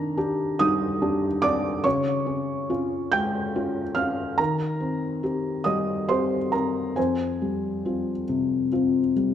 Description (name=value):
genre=neoclassical minimalist piano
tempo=68-73 BPM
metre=3/4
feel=rubato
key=unclear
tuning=A4 = 440 Hz
part: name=felt-muted upright piano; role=solo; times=0.0-9.3 s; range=F2 to G6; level=-22 LUFS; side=left 1 dB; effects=none
room=moderate concert hall reverb, RT60 1.9 s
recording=dark, warm production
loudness=-22 LUFS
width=side -9 dB against mid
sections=0.0-9.3 A section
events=none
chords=0.0 Ebmaj7; 1.8 Db; 4.4 Cm7/Eb; 7.0 Fmadd9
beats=0.16 1.02 | 1.85 2.70 3.56 | 4.38 5.23 6.09 | 6.97 7.85 8.71